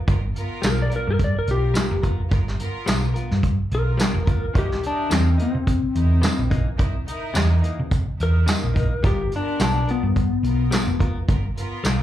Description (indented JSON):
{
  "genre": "straight-eighth soul blues",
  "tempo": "107 BPM",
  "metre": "4/4",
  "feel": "swing 55% on 16ths",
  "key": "unclear",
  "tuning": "A4 = 440 Hz",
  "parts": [
    { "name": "bright symphonic string section", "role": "sustained chords", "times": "0.1-12.0 s", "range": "B3 to A#4", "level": "-35 LUFS", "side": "right 1 dB", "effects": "plate reverb" },
    { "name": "hollow-body short-scale fingered electric bass", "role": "bass", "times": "0.1-12.0 s", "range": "F1 to C3", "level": "-22 LUFS", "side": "equal", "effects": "none" },
    { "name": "vintage brush drum kit", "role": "drums", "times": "0.1-12.0 s", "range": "hi-hat, kick drum, snare drum, tambourine", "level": "-23 LUFS", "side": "equal", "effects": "none" },
    { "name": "direct-recorded clean electric guitar", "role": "stabs", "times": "0.6-12.0 s", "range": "C3 to A#4", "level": "-32 LUFS", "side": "left 5 dB", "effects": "plate reverb, slapback echo" },
    { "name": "electric slide guitar", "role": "melody", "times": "0.7-11.0 s", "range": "B3 to D5", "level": "-25 LUFS", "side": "left 4 dB", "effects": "plate reverb, slapback echo" }
  ],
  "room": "little or no reverb",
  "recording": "live gig heard through the venue's PA, club reverb",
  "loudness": "-19 LUFS",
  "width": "side -12 dB against mid",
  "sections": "0.0-12.0 A section",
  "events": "none",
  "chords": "0.0 G7#9; 4.5 C7#9; 9.0 G7#9"
}